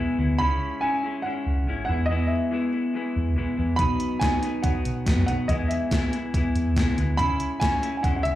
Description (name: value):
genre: indie rock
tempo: 142 BPM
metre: 4/4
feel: straight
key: unclear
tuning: A4 = 440 Hz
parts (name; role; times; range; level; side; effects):
- raw garage guitar; riff; 0.0-8.4 s; B2 to E4; -27 LUFS; left 2 dB; overdrive, slapback echo
- hollow-body short-scale picked electric bass; bass; 0.0-8.4 s; G#1 to F#2; -25 LUFS; equal; none
- warm upright piano; melody; 0.4-8.4 s; D#5 to B5; -28 LUFS; right 1 dB; slapback echo, tape echo
- gated 80s digital drum machine; drums; 3.8-8.3 s; hi-hat, kick drum, snare drum; -25 LUFS; equal; gated reverb, gated reverb snare
room: light reverb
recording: live gig heard through the venue's PA, club reverb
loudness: -22 LUFS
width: side -14 dB against mid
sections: 0.0-8.4 A section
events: none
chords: 0.4 C#m7; 1.9 E; 3.8 B; 5.5 E; 7.2 C#m7